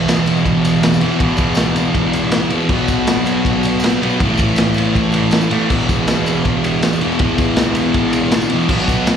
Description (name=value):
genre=garage rock duo or trio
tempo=160 BPM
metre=4/4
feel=straight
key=unclear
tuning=A4 = 440 Hz
part: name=thick fuzz guitar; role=riff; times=0.0-9.2 s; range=E2 to B3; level=-15 LUFS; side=equal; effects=distortion
part: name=crunchy breakbeat drum kit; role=drums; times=0.1-9.2 s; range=crash cymbal, kick drum, ride cymbal, snare drum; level=-18 LUFS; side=equal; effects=none
part: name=tambourine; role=percussion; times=0.1-9.2 s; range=none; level=-34 LUFS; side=left 2 dB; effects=none
room=light reverb, small room ambience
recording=live gig heard through the venue's PA, recital hall reverb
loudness=-13 LUFS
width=side -8 dB against mid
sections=0.0-9.2 A section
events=none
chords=0.0 E5; 2.7 B5; 4.2 A5; 5.7 E5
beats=0.09 0.46 0.83 | 1.21 1.58 1.96 2.33 | 2.70 3.08 3.45 3.83 | 4.20 4.58 4.95 5.32 | 5.70 6.07 6.45 6.82 | 7.20 7.57 7.94 8.32 | 8.69 9.07